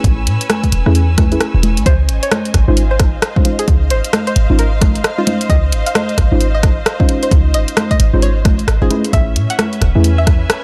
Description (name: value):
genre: UK garage, two-step garage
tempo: 132 BPM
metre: 4/4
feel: swing 61% on 16ths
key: Db major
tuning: A4 = 440 Hz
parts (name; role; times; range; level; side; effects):
- muted chamber violin section; sustained chords; 0.0-10.6 s; Eb5 to E6; -32 LUFS; equal; sidechain pumping
- deep mellow chord stab; stabs; 0.0-10.1 s; Ab3 to C5; -23 LUFS; equal; chorus, cassette tape, digital delay
- short 808-style bass; bass; 0.0-10.5 s; E1 to A2; -16 LUFS; equal; tube saturation
- electronic kick drum; drums; 0.0-10.4 s; none; -16 LUFS; equal; overdrive
- garage drum kit; drums; 0.0-10.6 s; congas, hi-hat, rim click; -19 LUFS; equal; none
- rich symphonic string section; texture; 0.0-10.6 s; C#4 to G#5; -30 LUFS; equal; sidechain pumping
- string-like resonator pluck; melody; 1.9-10.3 s; F4 to Gb5; -24 LUFS; equal; chorus, digital delay
room: little or no reverb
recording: none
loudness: -14 LUFS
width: mono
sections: 0.0-10.6 A section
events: filter sweep on synth stab 0.0-10.6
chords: 0.0 Amaj9; 1.9 Dbmaj9; 9.1 Amaj9